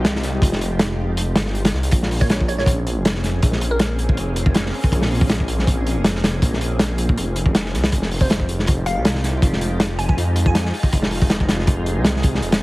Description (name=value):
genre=drum and bass, jungle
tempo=160 BPM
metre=4/4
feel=swing 54% on 16ths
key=Bb dorian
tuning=A4 = 440 Hz
part: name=soft string machine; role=sustained chords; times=0.0-12.6 s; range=Ab3 to Ab4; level=-28 LUFS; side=equal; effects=phaser, ensemble chorus
part: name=detuned saw bass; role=bass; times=0.0-12.6 s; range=F1 to F2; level=-22 LUFS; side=equal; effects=tube saturation
part: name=crunchy breakbeat drum kit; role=drums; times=0.0-12.6 s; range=hi-hat, kick drum, snare drum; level=-18 LUFS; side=equal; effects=none
part: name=glassy wavetable pluck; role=melody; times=2.2-4.0, 8.2-10.6 s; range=Bb4 to Ab5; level=-28 LUFS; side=right 1 dB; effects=chorus, dub echo
room=light reverb, studio ambience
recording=heavily compressed radio sound, vinyl crackle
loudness=-17 LUFS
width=side -20 dB against mid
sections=0.0-12.6 A section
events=none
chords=0.0 Fm9; 1.9 Bbm9; 7.9 Fm9